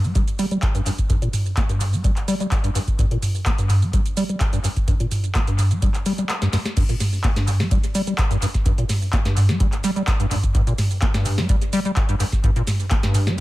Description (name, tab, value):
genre	acid house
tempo	127 BPM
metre	4/4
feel	straight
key	G minor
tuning	A4 = 440 Hz
part	deep acid bass	riff	0.0-13.4 s	G2 to Bb3	-23 LUFS	equal	analog chorus, vintage 12-bit sampler grit, sidechain pumping, tape echo
part	booming analog drum machine	drums	0.0-13.4 s	crash cymbal, handclaps, hi-hat, shaker, snare drum, toms	-24 LUFS	equal	analog delay
part	electronic kick drum	drums	0.2-13.0 s	none	-20 LUFS	equal	none
room	little or no reverb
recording	echo-heavy mix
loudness	-18 LUFS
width	side -17 dB against mid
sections	0.0-6.8 A section; 6.8-13.4 B section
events	kick drops out 6.3-6.8; drum fill 6.3-6.8; drop 6.8-13.4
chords	none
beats	0.15 0.63 | 1.10 1.57 2.04 2.52 | 2.99 3.46 3.93 4.41 | 4.88 5.35 5.82 6.30 | 6.77 7.24 7.71 8.19 | 8.66 9.13 9.60 10.07 | 10.55 11.02 11.49 11.96 | 12.44 12.91